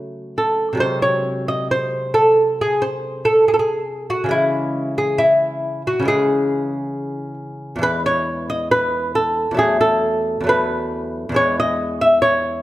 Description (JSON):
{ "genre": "classical, baroque-style dance for lute", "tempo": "68 BPM", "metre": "4/4", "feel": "rubato", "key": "C# minor, E major from 7.8 s", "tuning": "A4 = 439 Hz", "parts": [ { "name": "lute", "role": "solo", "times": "0.0-12.6 s", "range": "E2 to E5", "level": "-16 LUFS", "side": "equal", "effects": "none" } ], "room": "moderate recital hall reverb, RT60 1.4 s", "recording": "none", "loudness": "-16 LUFS", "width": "side -15 dB against mid", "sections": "0.0-12.6 A section", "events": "none", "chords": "0.0 F#m/C#; 0.8 G#7/B#; 4.3 C#m; 7.8 E; 9.6 B5/E; 11.3 E" }